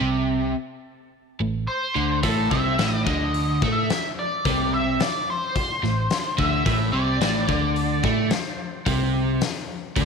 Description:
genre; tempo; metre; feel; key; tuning
blues rock power trio and southern rock; 108 BPM; 4/4; straight; A minor; A4 = 439 Hz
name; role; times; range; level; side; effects
overdriven electric guitar; riff; 0.0-10.1 s; A2 to A3; -24 LUFS; right 1 dB; none
vintage muted picked electric bass; bass; 0.0-10.1 s; A1 to A2; -26 LUFS; right 1 dB; none
octave-fuzz lead guitar; melody; 1.7-9.1 s; A4 to E5; -26 LUFS; equal; wah, distortion
big rock drum kit; drums; 2.2-10.1 s; hi-hat, kick drum, snare drum; -27 LUFS; left 4 dB; none
room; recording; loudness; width
light reverb, studio reverb; 1960s-style stereo; -20 LUFS; side -5 dB against mid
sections
0.0-10.1 A section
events
none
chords
0.0 Am

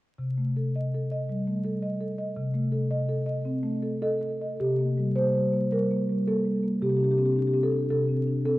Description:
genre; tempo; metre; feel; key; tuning
classical, contemporary piece for solo marimba; 109 BPM; 4/4; rubato; C dorian; A4 = 440 Hz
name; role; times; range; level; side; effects
marimba with soft mallets; solo; 0.2-8.6 s; C3 to Eb5; -24 LUFS; equal; none
room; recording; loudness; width
wet church reverb, RT60 3.6 s; worn, warbling old tape, cassette tape, vinyl crackle, warbly pitch drift; -24 LUFS; side -18 dB against mid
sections
0.2-4.6 A section; 4.6-8.6 B section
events
none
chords
0.2 Cm6; 4.6 C5; 6.8 D7sus4/C

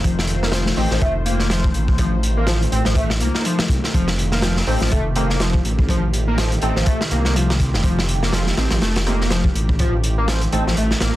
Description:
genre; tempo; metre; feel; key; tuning
breakbeat, breaks; 123 BPM; 4/4; swing 58% on 16ths; unclear; A4 = 438 Hz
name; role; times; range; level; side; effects
phased analog pad; sustained chords; 0.0-11.2 s; Eb3 to C5; -28 LUFS; equal; phaser, chorus, vintage 12-bit sampler grit, sidechain pumping
overdriven synth lead; riff; 0.0-11.1 s; F3 to C4; -24 LUFS; left 1 dB; ensemble chorus, tape echo
dark detuned saw bass; bass; 0.0-11.1 s; F1 to C2; -20 LUFS; equal; none
crunchy breakbeat drum kit; drums; 0.0-11.1 s; hi-hat, kick drum, snare drum; -21 LUFS; equal; none
orchestra-hit-like synth stab; stabs; 0.8-0.9, 4.7-10.6 s; A3 to A4; -29 LUFS; right 1 dB; built-in reverb, vintage 12-bit sampler grit, tape echo
room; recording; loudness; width
light reverb; dense, heavily limited modern master, vinyl crackle; -16 LUFS; side -15 dB against mid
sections
0.0-11.2 A section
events
none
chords
0.0 F7

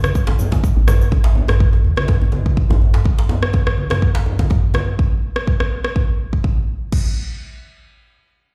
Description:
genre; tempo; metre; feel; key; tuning
afro house; 124 BPM; 4/4; swing 54% on 16ths; unclear; A4 = 440 Hz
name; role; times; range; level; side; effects
afro-pop drum kit; drums; 0.0-7.0 s; crash cymbal, rim click; -27 LUFS; equal; none
congas; percussion; 0.0-4.9 s; none; -26 LUFS; equal; none
egg shaker; percussion; 0.0-1.1 s; none; -41 LUFS; equal; none
electronic kick drum; drums; 0.2-7.0 s; none; -19 LUFS; equal; none
woody FM bass; bass; 0.3-3.0 s; A1 to E2; -17 LUFS; equal; sidechain pumping
djembe; percussion; 0.3-4.8 s; none; -25 LUFS; equal; none
room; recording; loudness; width
little or no reverb; played on a big sound system in a bare room, large studio reverb; -17 LUFS; mono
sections
0.0-6.9 A section; 6.9-8.5 B section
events
none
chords
none

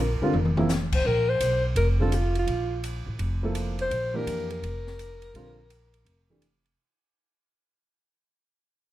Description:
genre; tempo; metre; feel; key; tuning
modal jazz; 168 BPM; 4/4; swing 65% on 8ths; Bb lydian; A4 = 440 Hz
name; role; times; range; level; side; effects
mellow alto saxophone; melody; 0.0-6.4 s; F4 to C5; -28 LUFS; left 1 dB; plate reverb
upright bass; bass; 0.0-6.7 s; F1 to F2; -28 LUFS; equal; none
warm baby grand piano; accompaniment; 0.2-6.4 s; C3 to A4; -28 LUFS; right 1 dB; none
open jazz drum kit; drums; 0.3-6.7 s; crash cymbal, hi-hat, kick drum, ride cymbal, snare drum, toms; -31 LUFS; left 1 dB; none
room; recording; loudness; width
light reverb; none; -23 LUFS; side -14 dB against mid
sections
0.0-1.1 A section; 1.1-6.8 B section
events
drum fill 0.3-0.7; fade-out 1.1-6.8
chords
0.0 Bbsus2; 1.1 Bb

